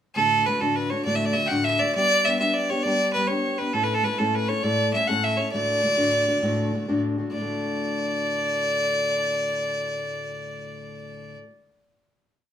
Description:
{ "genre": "celtic folk, Celtic slide", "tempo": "134 BPM (dotted quarters)", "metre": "12/8", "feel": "straight", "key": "D major", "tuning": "A4 = 436 Hz", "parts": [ { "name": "clear fiddle", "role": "melody", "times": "0.1-11.4 s", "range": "A4 to G5", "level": "-23 LUFS", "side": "right 1 dB", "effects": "none" }, { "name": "fingerpicked steel-string acoustic guitar", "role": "accompaniment", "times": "0.2-11.5 s", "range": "D2 to A4", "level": "-27 LUFS", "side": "left 2 dB", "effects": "none" } ], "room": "wet small room reverb, RT60 0.6 s", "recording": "band playing live in one room", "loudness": "-21 LUFS", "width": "side -9 dB against mid", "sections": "0.2-7.3 A section; 7.3-10.9 final chord", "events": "none", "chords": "0.2 D; 1.9 G; 3.7 A; 5.5 D", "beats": "| 0.16 0.61 1.05 1.50 | 1.95 2.40 2.84 3.29 | 3.74 4.19 4.64 5.09 | 5.54 5.99 6.43 6.88 | 7.33 7.79 8.23 8.69 | 9.13 9.58 10.03 10.48" }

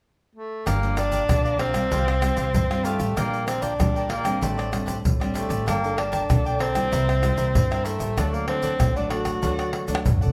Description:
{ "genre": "samba and choro", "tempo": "96 BPM", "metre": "4/4", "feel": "straight", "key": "G minor", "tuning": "A4 = 440 Hz", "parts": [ { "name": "warm tenor saxophone", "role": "melody", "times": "0.4-10.0 s", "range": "A3 to F#4", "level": "-29 LUFS", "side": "equal", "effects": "none" }, { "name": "cavaquinho", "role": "accompaniment", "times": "0.7-10.3 s", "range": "D4 to A5", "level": "-34 LUFS", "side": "equal", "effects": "none" }, { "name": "nylon-string guitar", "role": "accompaniment", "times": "0.7-10.3 s", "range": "G2 to A4", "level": "-32 LUFS", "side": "equal", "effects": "none" }, { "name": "upright bass", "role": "bass", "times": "0.7-10.3 s", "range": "G1 to G2", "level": "-30 LUFS", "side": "equal", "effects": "none" }, { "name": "egg shaker, surdo, pandeiro and tamborim", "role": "percussion", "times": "0.7-10.3 s", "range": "none", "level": "-28 LUFS", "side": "equal", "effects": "none" } ], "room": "moderate large studio reverb, RT60 0.9 s", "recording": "band playing live in one room", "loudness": "-23 LUFS", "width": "mono", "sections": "0.7-10.3 A section", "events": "drum fill 9.7-10.3", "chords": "0.0 N.C.; 0.7 Gm7; 1.9 Csus4; 3.2 Gm7/Bb; 4.4 D7sus4/A; 5.7 Gmadd9; 6.9 C7; 8.2 D", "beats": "0.04 | 0.67 1.29 1.92 2.54 | 3.17 3.79 4.42 5.05 | 5.67 6.30 6.92 7.55 | 8.18 8.80 9.43 10.06" }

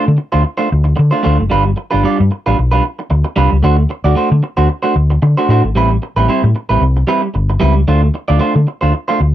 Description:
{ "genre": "disco", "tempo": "113 BPM", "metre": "4/4", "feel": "swing 56% on 16ths", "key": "unclear", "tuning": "A4 = 440 Hz", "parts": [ { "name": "electric guitar at the edge of break-up", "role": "accompaniment", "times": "0.0-9.2 s", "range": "G3 to D5", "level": "-15 LUFS", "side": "right 3 dB", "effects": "none" }, { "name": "hollow-body short-scale fingered electric bass", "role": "bass", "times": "0.1-9.3 s", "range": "F#1 to D3", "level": "-12 LUFS", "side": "left 1 dB", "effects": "none" } ], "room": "little or no reverb", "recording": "dry, close 1970s-style studio recording", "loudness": "-11 LUFS", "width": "side -12 dB against mid", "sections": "0.0-9.3 A section", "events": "none", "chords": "0.0 Dm7; 1.5 G7; 3.6 D7; 5.8 Am9; 7.9 Dm7", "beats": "0.45 0.98 | 1.51 2.04 2.57 3.10 | 3.63 4.16 4.70 5.22 | 5.76 6.29 6.82 7.35 | 7.88 8.41 8.94" }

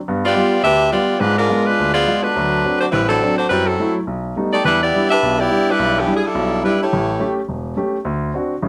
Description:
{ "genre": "jazz", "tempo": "210 BPM", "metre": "4/4", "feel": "swing 62% on 8ths", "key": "D major", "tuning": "A4 = 440 Hz", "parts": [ { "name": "warm grand piano", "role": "accompaniment", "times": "0.1-8.7 s", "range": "E1 to G4", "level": "-22 LUFS", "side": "equal", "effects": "none" }, { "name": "clear saxophone section", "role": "melody", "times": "0.3-7.4 s", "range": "E3 to E5", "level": "-18 LUFS", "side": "equal", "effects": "none" } ], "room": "moderate club reverb, RT60 0.8 s", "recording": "none", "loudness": "-17 LUFS", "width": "mono", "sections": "0.0-8.7 A section", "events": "none", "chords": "0.1 G7; 1.2 G#dim7; 2.4 D7; 3.5 F#m7b5; 4.1 Baug7; 4.6 Em7; 6.9 A7; 8.1 D7", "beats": "| 0.07 0.36 0.64 0.93 | 1.21 1.50 1.78 2.07 | 2.35 2.64 2.92 3.21 | 3.49 3.78 4.06 4.35 | 4.63 4.92 5.20 5.49 | 5.77 6.06 6.34 6.63 | 6.91 7.20 7.49 7.77 | 8.06 8.34 8.63" }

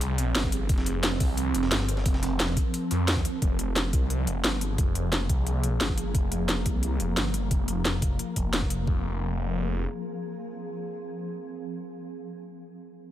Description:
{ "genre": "dark technical drum and bass", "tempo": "176 BPM", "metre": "4/4", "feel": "straight", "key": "F minor", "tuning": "A4 = 441 Hz", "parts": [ { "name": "swarming drone", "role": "sustained chords", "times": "0.0-12.4 s", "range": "F3 to Bb4", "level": "-33 LUFS", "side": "right 1 dB", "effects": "built-in reverb, sidechain pumping" }, { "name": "phased detuned saw bass", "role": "bass", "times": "0.0-9.9 s", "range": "F1 to F2", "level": "-28 LUFS", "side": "equal", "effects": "phaser, overdrive" }, { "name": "breakbeat sampler-style drum kit", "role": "drums", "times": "0.0-3.3 s", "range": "hi-hat, snare drum", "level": "-38 LUFS", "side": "equal", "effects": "high-pass filter on hats, high-pass filter on snare" }, { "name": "drum and bass drum kit", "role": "drums", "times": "0.0-8.8 s", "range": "hi-hat, snare drum", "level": "-29 LUFS", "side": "equal", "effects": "none" }, { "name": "electronic kick drum", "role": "drums", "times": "0.4-8.9 s", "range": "none", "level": "-27 LUFS", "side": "equal", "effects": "overdrive" } ], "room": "light reverb", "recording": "none", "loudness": "-25 LUFS", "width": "side -12 dB against mid", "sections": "0.0-8.9 A section; 8.9-11.6 B section", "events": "filter sweep on detuned saw bass 0.0-8.9", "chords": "0.0 Fm", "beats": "0.01 0.35 | 0.69 1.03 1.37 1.72 | 2.06 2.40 2.74 3.08 | 3.42 3.76 4.10 4.44 | 4.78 5.12 5.46 5.81 | 6.15 6.49 6.83 7.17 | 7.51 7.85 8.19 8.53 | 8.87 9.21 9.56 9.90 | 10.24 10.58 10.92 11.26" }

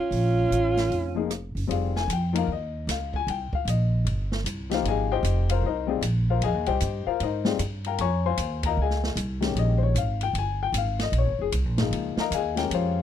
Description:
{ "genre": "modal jazz", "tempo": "152 BPM", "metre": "4/4", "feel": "swing 64% on 8ths", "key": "F minor", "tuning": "A4 = 439 Hz", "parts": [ { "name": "warm alto saxophone", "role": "melody", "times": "0.0-1.3 s", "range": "F4", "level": "-25 LUFS", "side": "equal", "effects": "none" }, { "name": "warm tenor saxophone", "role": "second line", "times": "0.0-1.3 s", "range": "Db4", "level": "-31 LUFS", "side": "right 14 dB", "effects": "none" }, { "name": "upright bass", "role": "bass", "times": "0.1-13.0 s", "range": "F1 to Ab2", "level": "-26 LUFS", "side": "right 1 dB", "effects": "none" }, { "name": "open jazz drum kit", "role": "drums", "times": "0.1-12.8 s", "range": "hi-hat, kick drum, ride cymbal, rim click, snare drum", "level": "-33 LUFS", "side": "right 1 dB", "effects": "none" }, { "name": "clear upright piano", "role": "accompaniment", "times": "1.1-13.0 s", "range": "Eb3 to Db6", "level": "-27 LUFS", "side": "left 12 dB", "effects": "none" } ], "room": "little or no reverb", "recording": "dry, close 1970s-style studio recording", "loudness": "-23 LUFS", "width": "side -10 dB against mid", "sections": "0.0-1.7 A section; 1.7-13.0 B section", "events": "none", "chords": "0.0 Bbm; 1.7 Fm11", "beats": "| 0.11 0.51 0.90 1.30 | 1.69 2.08 2.48 2.87 | 3.26 3.66 4.05 4.45 | 4.84 5.23 5.63 6.02 | 6.41 6.81 7.20 7.59 | 7.99 8.38 8.77 9.17 | 9.56 9.95 10.35 10.74 | 11.13 11.53 11.92 12.31 | 12.70" }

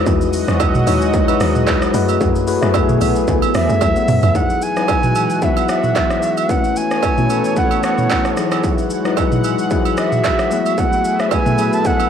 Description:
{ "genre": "amapiano", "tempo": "112 BPM", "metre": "4/4", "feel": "swing 55% on 16ths", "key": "E major", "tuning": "A4 = 440 Hz", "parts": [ { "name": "mellow tine electric piano", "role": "accompaniment", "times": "0.0-12.1 s", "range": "F#3 to F#5", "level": "-19 LUFS", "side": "left 9 dB", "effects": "cassette tape" }, { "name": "lush unison pad", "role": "sustained chords", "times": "0.0-12.1 s", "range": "E3 to F#5", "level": "-22 LUFS", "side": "right 2 dB", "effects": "chorus, cassette tape" }, { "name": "woody log drum bass", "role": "bass", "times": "0.0-4.3 s", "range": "B1 to F#2", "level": "-20 LUFS", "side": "right 2 dB", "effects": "none" }, { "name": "industrial drum kit", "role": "drums", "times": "0.1-12.1 s", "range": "handclaps, hi-hat, kick drum, rim click, shaker, toms", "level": "-19 LUFS", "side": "right 2 dB", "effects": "distortion, cassette tape" }, { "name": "agogo bells and woodblock", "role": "percussion", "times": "0.6-12.1 s", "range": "none", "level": "-24 LUFS", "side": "right 16 dB", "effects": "none" }, { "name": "bright reedy jazz flute", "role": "melody", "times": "3.6-12.1 s", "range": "E5 to A5", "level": "-20 LUFS", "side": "right 2 dB", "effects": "cassette tape, analog delay" } ], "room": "light reverb, digital ambience", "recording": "home recording on cassette", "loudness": "-14 LUFS", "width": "side -8 dB against mid", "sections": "0.0-4.4 A section; 4.4-12.1 B section", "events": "drop 0.0-4.4; drum fill 3.8-4.4", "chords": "0.0 Emaj9; 1.9 F#m11; 4.4 Emaj9; 6.5 B9sus4; 8.4 Emaj9; 10.5 F#m11", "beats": "| 0.07 0.60 1.14 1.67 | 2.21 2.74 3.28 3.81 | 4.35 4.89 5.42 5.96 | 6.49 7.03 7.57 8.10 | 8.64 9.17 9.71 10.24 | 10.78 11.31 11.85" }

